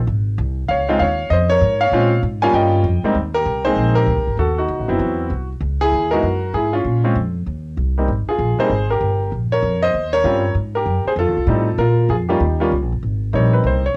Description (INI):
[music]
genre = jazz piano trio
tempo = 194 BPM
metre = 4/4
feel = swing 63% on 8ths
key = Ab major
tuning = A4 = 441 Hz
[part]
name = upright bass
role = bass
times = 0.0-14.0 s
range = Gb1 to Bb2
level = -22 LUFS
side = equal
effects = none
[part]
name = clear concert grand piano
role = melody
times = 0.7-14.0 s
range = Ab2 to Ab5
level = -20 LUFS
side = equal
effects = cassette tape
[sound]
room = moderate small room reverb, RT60 0.5 s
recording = home recording on cassette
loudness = -18 LUFS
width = mono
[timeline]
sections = 0.0-3.2 A section; 3.2-13.0 B section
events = none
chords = 0.0 Ab; 0.7 Dbmaj7; 1.9 Bbm7; 2.5 Eb9; 3.2 Abmaj9; 4.4 Ebm7b5; 5.0 Cmaj7#11; 5.6 Dbmadd9; 6.9 Bbm; 7.5 Eb5; 8.1 Abmaj9; 9.3 Bbm; 9.9 Eb13; 10.6 Absus2; 11.2 F7; 11.8 Bb5; 12.4 Eb7; 13.0 Abmaj9